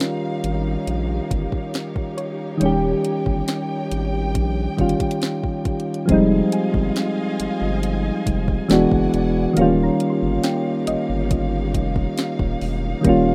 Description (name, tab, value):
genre	contemporary R&B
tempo	69 BPM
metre	4/4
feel	straight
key	unclear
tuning	A4 = 443 Hz
part	soft electric-piano-like synth keys	accompaniment	0.0-13.3 s	Eb3 to Bb4	-22 LUFS	equal	chorus
part	warm studio string section	sustained chords	0.0-13.3 s	Eb4 to Ab5	-35 LUFS	equal	none
part	smooth R&B drum kit	drums	0.0-13.2 s	hi-hat, kick drum, snare drum	-26 LUFS	equal	none
part	soft round pluck	texture	0.0-12.1 s	Db5 to C6	-35 LUFS	equal	chorus, tape echo
part	saturated sub bass	bass	0.4-13.3 s	Eb1 to Bb1	-27 LUFS	equal	none
room	little or no reverb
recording	rough home demo mix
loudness	-21 LUFS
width	mono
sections	0.0-6.1 A section; 6.1-13.3 B section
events	none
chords	0.0 Eb9; 6.1 Fm9; 8.7 E9; 9.6 Eb9